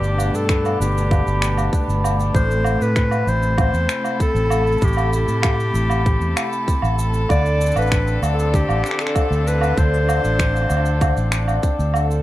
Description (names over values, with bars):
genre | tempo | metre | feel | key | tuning
folktronica | 97 BPM | 4/4 | straight | unclear | A4 = 440 Hz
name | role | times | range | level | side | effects
clear clarinet | melody | 0.0-11.6 s | G4 to D5 | -24 LUFS | left 1 dB | digital delay
rich string quartet | sustained chords | 0.0-12.2 s | B2 to A4 | -28 LUFS | left 1 dB | none
cimbalom | arpeggios | 0.0-12.2 s | G2 to A4 | -26 LUFS | right 1 dB | digital delay
fingered electric bass | bass | 0.0-12.2 s | G1 to A2 | -20 LUFS | equal | none
cabasa, woodblock and finger snaps | drums | 0.0-12.2 s | none | -25 LUFS | right 1 dB | none
electronic kick drum | drums | 0.5-11.8 s | none | -19 LUFS | equal | none
room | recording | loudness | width
moderate studio reverb, RT60 0.6 s | dark, warm production | -16 LUFS | side -15 dB against mid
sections
0.0-12.2 A section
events
none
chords
0.0 Gadd9; 2.3 Am; 7.3 Dm7